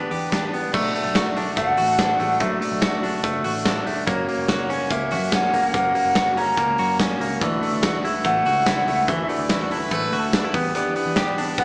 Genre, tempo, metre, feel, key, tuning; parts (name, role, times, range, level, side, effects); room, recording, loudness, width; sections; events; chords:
jangly indie pop; 144 BPM; 4/4; straight; B minor; A4 = 441 Hz
lead guitar through a small cranked amp; melody; 0.0-11.6 s; B4 to A#5; -26 LUFS; equal; overdrive
fingerpicked steel-string acoustic guitar; accompaniment; 0.0-11.6 s; B2 to G4; -32 LUFS; equal
direct-recorded clean electric guitar; arpeggios; 0.0-11.6 s; E3 to G4; -27 LUFS; equal
vintage muted picked electric bass; bass; 0.1-11.6 s; E1 to F#2; -35 LUFS; equal
big rock drum kit; drums; 0.1-11.6 s; crash cymbal, hi-hat, kick drum, ride cymbal, snare drum; -27 LUFS; equal
warm trumpet; second line; 9.7-10.6 s; A4 to B4; -32 LUFS; equal
moderate large studio reverb, RT60 1.3 s; band playing live in one room, small speaker sound; -21 LUFS; mono
0.7-11.6 A section
0.0 Em7; 0.7 Bm7; 4.1 F#; 7.4 Dadd9; 10.5 Em7